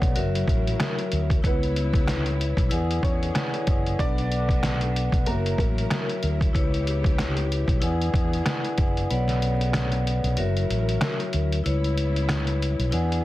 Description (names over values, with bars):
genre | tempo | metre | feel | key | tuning
hip hop, boom-bap hip-hop | 94 BPM | 4/4 | swing 55% on 16ths | unclear | A4 = 441 Hz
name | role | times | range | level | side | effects
vibraphone with medium mallets | accompaniment | 0.0-13.2 s | F#3 to G#5 | -29 LUFS | left 3 dB | none
rich studio string section | sustained chords | 0.0-13.2 s | C#3 to A#4 | -36 LUFS | equal | none
mellow fretless electric bass | bass | 0.0-13.2 s | F#1 to E2 | -25 LUFS | equal | none
trip hop sampler-style drum kit | drums | 0.0-13.2 s | hi-hat, kick drum, rim click, snare drum | -25 LUFS | equal | none
dark upright piano | melody | 1.5-6.1 s | A#3 to D5 | -32 LUFS | right 1 dB | tape echo
room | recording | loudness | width
little or no reverb | dense, heavily limited modern master, vinyl crackle | -22 LUFS | side -16 dB against mid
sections
0.0-11.7 A section; 11.7-13.2 B section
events
kick muted 9.1-11.7, 11.7-13.2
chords
0.2 F#7; 1.4 C#m7b5; 2.7 E7; 4.0 Bm; 5.3 F#7; 6.5 C#m7b5; 7.8 E7; 9.1 Bmadd9; 10.4 F#7; 11.7 C#m7b5